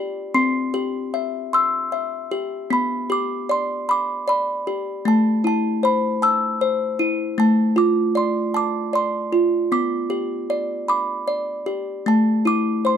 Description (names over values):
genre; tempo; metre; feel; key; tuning
children's music, lullaby; 51 BPM (dotted quarters); 6/8; straight; unclear; A4 = 439 Hz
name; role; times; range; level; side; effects
music box; solo; 0.0-13.0 s; A3 to E6; -19 LUFS; equal; none
room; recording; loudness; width
light reverb; close, detailed microphones; -19 LUFS; side -8 dB against mid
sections
0.0-2.7 A section; 2.7-13.0 B section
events
none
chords
0.3 C; 2.7 G; 5.1 Am; 7.4 Dm/A; 9.7 G; 12.1 Am